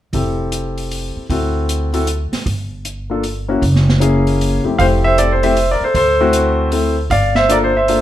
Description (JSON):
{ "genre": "jazz piano trio", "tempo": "155 BPM", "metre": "3/4", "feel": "swing 64% on 8ths", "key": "F major", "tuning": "A4 = 440 Hz", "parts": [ { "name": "warm concert grand piano", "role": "melody", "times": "0.1-8.0 s", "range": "F2 to F5", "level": "-15 LUFS", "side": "left 1 dB", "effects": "plate reverb" }, { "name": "upright bass", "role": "bass", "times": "0.1-8.0 s", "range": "F1 to D2", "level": "-18 LUFS", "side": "right 1 dB", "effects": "none" }, { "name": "open jazz drum kit", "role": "drums", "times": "0.1-8.0 s", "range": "hi-hat, kick drum, snare drum", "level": "-24 LUFS", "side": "right 2 dB", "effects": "none" } ], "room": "light reverb", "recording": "none", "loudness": "-13 LUFS", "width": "side -12 dB against mid", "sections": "0.1-4.8 A section; 4.8-8.0 B section", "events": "none", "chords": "0.1 Fmaj7; 1.3 D7; 2.5 Gm; 3.6 Gb9; 4.8 Fmaj7; 5.9 D7; 7.1 Gm9" }